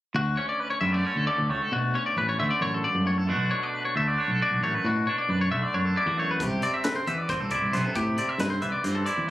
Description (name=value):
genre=math rock and midwest emo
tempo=269 BPM (eighths)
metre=7/8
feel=straight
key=D major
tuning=A4 = 441 Hz
part: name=twangy electric guitar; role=accompaniment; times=0.1-9.3 s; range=D2 to A4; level=-30 LUFS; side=right 4 dB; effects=spring reverb
part: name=picked electric bass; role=bass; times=0.1-9.3 s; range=A1 to B2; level=-28 LUFS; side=equal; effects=none
part: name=twangy electric guitar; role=arpeggios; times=0.2-9.3 s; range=F#4 to E5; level=-27 LUFS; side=left 3 dB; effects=none
part: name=crisp fusion drum kit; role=drums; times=6.4-9.2 s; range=hi-hat, kick drum, snare drum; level=-34 LUFS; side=equal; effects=none
room=light reverb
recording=recorded on a phone in the room, club ambience, compression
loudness=-23 LUFS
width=side -14 dB against mid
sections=0.2-9.3 A section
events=none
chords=0.2 Dmaj7; 3.3 Bm7; 6.4 Cmaj7